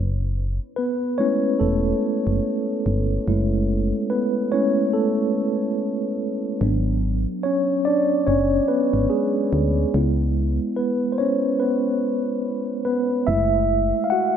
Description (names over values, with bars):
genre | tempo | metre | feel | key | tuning
contemporary R&B | 72 BPM | 4/4 | swing 58% on 16ths | F# minor | A4 = 440 Hz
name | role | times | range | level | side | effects
solid FM bass | bass | 0.0-13.9 s | E1 to D2 | -22 LUFS | equal | none
mellow tine electric piano | accompaniment | 0.8-14.4 s | F#3 to F#5 | -20 LUFS | equal | medium stereo tremolo
room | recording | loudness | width
wet lush hall reverb, RT60 2.5 s | dreamy mix soaked in reverb | -19 LUFS | side -8 dB against mid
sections
0.0-14.4 A section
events
tine electric piano solo 0.0-14.4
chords
0.0 F#m9; 6.6 G#m7b5; 9.9 C#m7; 13.3 F#m9